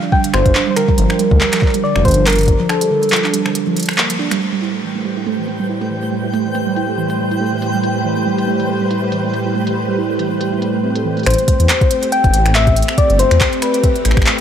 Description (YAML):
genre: IDM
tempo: 140 BPM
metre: 4/4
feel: swing 56% on 16ths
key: A minor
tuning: A4 = 438 Hz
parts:
  - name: soft struck synth lead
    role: melody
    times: 0.0-4.0, 11.3-14.4 s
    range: A4 to G5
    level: -18 LUFS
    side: left 2 dB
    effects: chorus, digital delay
  - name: harp-like synth pluck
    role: arpeggios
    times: 0.0-11.2 s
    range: D3 to A4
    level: -19 LUFS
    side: right 6 dB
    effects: chorus, digital delay
  - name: electronic kick drum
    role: drums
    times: 0.1-2.6, 11.5-14.2 s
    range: none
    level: -15 LUFS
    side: equal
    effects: studio reverb
  - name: organic electronic drum kit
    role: drums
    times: 0.2-14.4 s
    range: finger snaps, handclaps, hi-hat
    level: -20 LUFS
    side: equal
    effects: low-pass filter on hats, studio reverb, low-pass filter on snare
  - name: dark detuned saw bass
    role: bass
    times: 0.3-2.5, 11.3-14.2 s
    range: F1 to E2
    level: -15 LUFS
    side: equal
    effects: none
  - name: soft string machine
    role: sustained chords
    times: 4.7-14.4 s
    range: A2 to C5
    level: -20 LUFS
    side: left 1 dB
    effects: ensemble chorus, vintage 12-bit sampler grit
  - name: twinkling granular texture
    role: texture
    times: 4.9-11.3 s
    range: G5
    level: -26 LUFS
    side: left 2 dB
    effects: built-in reverb
room: light reverb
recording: none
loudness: -13 LUFS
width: side -9 dB against mid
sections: 0.0-4.4 A section; 4.4-11.3 B section; 11.3-14.4 C section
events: break 2.7-4.4; band accent 4.0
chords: 0.0 Gmadd9; 4.4 Am9